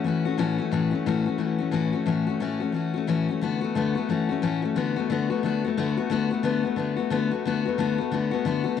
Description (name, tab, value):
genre	rock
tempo	179 BPM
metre	4/4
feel	swing 61% on 8ths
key	D major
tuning	A4 = 437 Hz
part	picked steel-string acoustic guitar	solo	0.0-8.8 s	A2 to F#4	-23 LUFS	left 6 dB	none
room	wet spring reverb, RT60 2.5 s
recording	none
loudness	-23 LUFS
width	side -8 dB against mid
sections	0.0-4.8 A section; 4.8-8.8 B section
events	none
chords	0.0 A6; 3.4 D6; 4.1 A6; 4.8 D6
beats	0.05 0.39 | 0.72 1.06 1.40 1.73 | 2.07 2.40 2.74 3.08 | 3.41 3.75 4.08 4.42 | 4.76 5.09 5.43 5.76 | 6.10 6.44 6.77 7.11 | 7.45 7.78 8.12 8.45 | 8.79